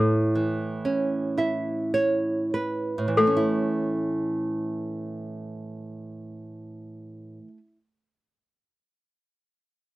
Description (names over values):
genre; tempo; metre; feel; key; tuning
children's music, lullaby; 46-63 BPM; 3/4; rubato; A major; A4 = 439 Hz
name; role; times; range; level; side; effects
toy piano; melody; 0.0-7.6 s; A4; -25 LUFS; left 3 dB; none
nylon-string guitar; accompaniment; 0.0-7.8 s; A2 to E5; -25 LUFS; right 2 dB; none
room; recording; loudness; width
little or no reverb; dry, close 1970s-style studio recording; -23 LUFS; side -17 dB against mid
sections
0.0-3.2 A section; 3.2-7.0 B section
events
slowing down 0.0-3.2; nylon-string guitar fill 0.9-3.2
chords
0.0 A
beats
0.86 1.95 | 3.17 4.45 5.70